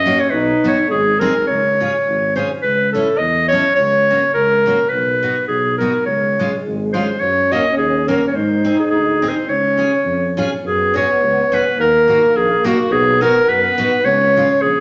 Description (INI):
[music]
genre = alpine folk, alpine dance band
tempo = 105 BPM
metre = 2/4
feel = swing 53% on 8ths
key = Db major, F# major from 10.6 s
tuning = A4 = 441 Hz
[part]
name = clear clarinet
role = melody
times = 0.0-14.8 s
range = F#4 to Eb5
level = -17 LUFS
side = equal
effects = none
[part]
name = warm euphonium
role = second line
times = 0.0-1.5, 6.1-14.8 s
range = G#3 to Eb4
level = -23 LUFS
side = equal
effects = none
[part]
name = mellow tuba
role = bass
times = 0.0-14.8 s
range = Ab1 to Ab2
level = -27 LUFS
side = equal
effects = none
[part]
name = picked steel-string acoustic guitar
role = accompaniment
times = 0.1-14.5 s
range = Ab3 to A4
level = -26 LUFS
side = equal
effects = none
[sound]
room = wet large studio reverb, RT60 1.3 s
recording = nothing above 7.8 kHz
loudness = -16 LUFS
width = mono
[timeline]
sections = 0.0-1.5 A section; 1.5-10.6 B section; 10.6-14.8 C section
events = none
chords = 0.3 B; 0.9 G#; 1.5 Db; 2.6 A/C#; 3.8 Gb/Db; 4.9 Cb; 6.1 Db; 7.2 Gb; 8.3 Ab; 9.5 Db; 10.6 F#sus2; 11.8 D#m; 12.9 B; 14.0 C#